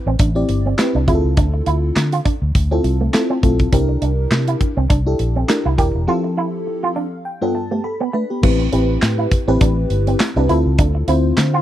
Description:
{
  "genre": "early-eighties boogie funk",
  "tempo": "102 BPM",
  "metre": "4/4",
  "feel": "swing 56% on 16ths",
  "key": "A minor",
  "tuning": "A4 = 440 Hz",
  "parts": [
    { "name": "electric guitar with an envelope filter", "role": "riff", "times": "0.1-11.6 s", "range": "A3 to G4", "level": "-22 LUFS", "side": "right 4 dB", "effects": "lush chorus" },
    { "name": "vintage muted fingered electric bass", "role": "bass", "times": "0.1-11.6 s", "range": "D#1 to D3", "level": "-18 LUFS", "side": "equal", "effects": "none" },
    { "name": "modern studio drum kit", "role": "drums", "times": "0.2-11.5 s", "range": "crash cymbal, handclaps, hi-hat, kick drum, snare drum", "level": "-18 LUFS", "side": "equal", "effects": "none" },
    { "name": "FM electric piano with soft pad layer", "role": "accompaniment", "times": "0.4-11.6 s", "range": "G2 to B5", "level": "-20 LUFS", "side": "left 1 dB", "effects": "chorus" }
  ],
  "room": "small room ambience",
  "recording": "dry, close 1970s-style studio recording",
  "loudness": "-15 LUFS",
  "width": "side -12 dB against mid",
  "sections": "0.0-8.4 A section; 8.4-11.6 B section",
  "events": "break 6.1-8.4; FM electric piano fill 6.7-8.4",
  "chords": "0.0 Am7; 1.1 Dm7; 3.7 C7; 6.1 Fmaj7; 7.3 G; 8.4 Am7; 10.5 Dm7",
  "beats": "0.20 0.79 | 1.37 1.96 2.55 3.14 | 3.73 4.32 4.90 5.49 | 6.08 6.67 7.26 7.84 | 8.43 9.02 9.61 10.20 | 10.79 11.37"
}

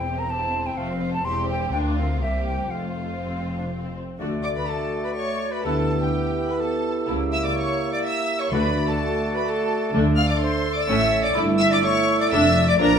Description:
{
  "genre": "quick classical-period movement for symphony orchestra",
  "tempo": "125 BPM",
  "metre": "3/4",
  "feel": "straight",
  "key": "F major, D major from 4.2 s, D minor from 9.9 s",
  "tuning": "A4 = 442 Hz",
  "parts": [
    { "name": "warm symphonic violin section", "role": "melody", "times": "0.0-13.0 s", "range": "Bb4 to F6", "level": "-29 LUFS", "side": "left 1 dB", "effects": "none" },
    { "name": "rich studio violin section", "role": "second line", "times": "0.0-13.0 s", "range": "A3 to F5", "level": "-31 LUFS", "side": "equal", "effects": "none" },
    { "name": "silver concert flute", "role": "second line", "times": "0.0-13.0 s", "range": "G4 to C6", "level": "-28 LUFS", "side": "left 1 dB", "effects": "none" },
    { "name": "clear studio viola section", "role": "accompaniment", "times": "0.0-13.0 s", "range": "A3 to F#4", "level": "-28 LUFS", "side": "left 1 dB", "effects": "none" },
    { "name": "dark studio cello section", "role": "bass", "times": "0.0-13.0 s", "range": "C2 to D3", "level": "-29 LUFS", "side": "equal", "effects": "none" },
    { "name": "warm studio double bass section", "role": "bass", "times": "0.0-13.0 s", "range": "E1 to D2", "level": "-29 LUFS", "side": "equal", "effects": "none" },
    { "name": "clear oboe", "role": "second line", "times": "4.2-13.0 s", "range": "C#5 to E5", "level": "-31 LUFS", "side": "right 2 dB", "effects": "none" },
    { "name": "warm clarinet", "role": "second line", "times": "4.2-13.0 s", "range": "F#4 to Bb4", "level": "-33 LUFS", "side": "right 1 dB", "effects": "none" },
    { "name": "dark bassoon", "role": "accompaniment", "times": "4.2-13.0 s", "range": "F3 to B3", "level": "-30 LUFS", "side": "right 2 dB", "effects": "none" },
    { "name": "mellow French horn section", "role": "sustained chords", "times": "4.2-13.0 s", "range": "A3 to F#4", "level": "-28 LUFS", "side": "right 3 dB", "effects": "none" },
    { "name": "timpani", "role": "percussion", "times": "8.5-10.6 s", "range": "D3", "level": "-31 LUFS", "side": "equal", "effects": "none" }
  ],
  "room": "wet stone room reverb, RT60 1.0 s",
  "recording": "minimal, uncompressed stereo recording",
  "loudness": "-20 LUFS",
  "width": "side -7 dB against mid",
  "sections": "0.0-4.2 A section; 4.2-13.0 B section",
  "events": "none",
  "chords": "0.0 C7/E; 0.8 F; 1.2 C/E; 1.7 Bb/D; 2.2 C7; 2.7 F; 4.2 D; 5.6 Em7/D; 7.1 C#dim7; 8.5 D; 9.9 D5; 10.9 A; 11.4 A5/G; 12.3 Dm/F",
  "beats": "0.30 0.78 | 1.25 1.73 2.21 | 2.70 3.20 3.70 | 4.19 4.68 5.16 | 5.64 6.12 6.61 | 7.09 7.56 8.04 | 8.52 8.99 9.47 | 9.94 10.41 10.88 | 11.36 11.84 12.32 | 12.80"
}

